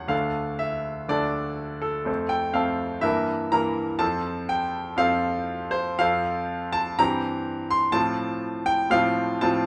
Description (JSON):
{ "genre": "classical, romantic character piece for solo piano", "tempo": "123 BPM", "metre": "4/4", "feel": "uneven beats, rubato", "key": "F major from 6.0 s", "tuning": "A4 = 440 Hz", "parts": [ { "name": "bright grand piano", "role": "solo", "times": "0.0-9.7 s", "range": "D2 to C6", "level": "-25 LUFS", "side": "equal", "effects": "none" } ], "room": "moderate large studio reverb, RT60 0.9 s", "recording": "nothing above 10.7 kHz", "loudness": "-25 LUFS", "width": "mono", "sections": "0.0-9.7 A section", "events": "none", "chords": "0.1 Dm; 2.1 F; 3.1 Edim/G; 4.0 F; 7.0 C7/G; 8.0 F/A" }